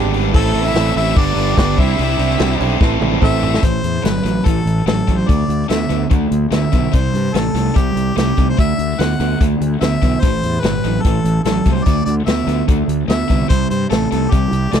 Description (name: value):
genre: classic rock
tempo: 146 BPM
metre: 4/4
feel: straight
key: A dorian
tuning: A4 = 440 Hz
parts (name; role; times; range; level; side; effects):
- reed electric piano; accompaniment; 0.0-3.6 s; C4 to D5; -24 LUFS; right 16 dB; overdrive
- crunchy overdriven guitar; riff; 0.0-14.8 s; G2 to A4; -20 LUFS; right 13 dB; none
- tight distorted guitar; riff; 0.0-14.8 s; G2 to E4; -22 LUFS; left 17 dB; distortion
- fuzz fingered electric bass; bass; 0.0-14.8 s; G1 to G2; -19 LUFS; left 1 dB; overdrive
- vintage drum kit; drums; 0.1-14.8 s; hi-hat, kick drum, snare drum, toms; -16 LUFS; left 1 dB; none
- clear harmonica; melody; 0.3-14.8 s; G4 to F#5; -23 LUFS; left 4 dB; none
- octave-fuzz lead guitar; second line; 0.4-2.6 s; A3 to E4; -27 LUFS; right 5 dB; distortion
room: little or no reverb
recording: dry, close 1970s-style studio recording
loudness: -13 LUFS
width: side -8 dB against mid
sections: 0.0-3.6 A section; 3.6-14.8 B section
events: drum fill 2.8-3.6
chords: 0.3 Am; 1.2 G; 1.8 Cadd9; 2.8 Amadd9; 5.3 Dsus2; 6.9 C5; 8.6 Dadd9; 10.2 Amadd9; 11.9 Dsus2; 13.5 C5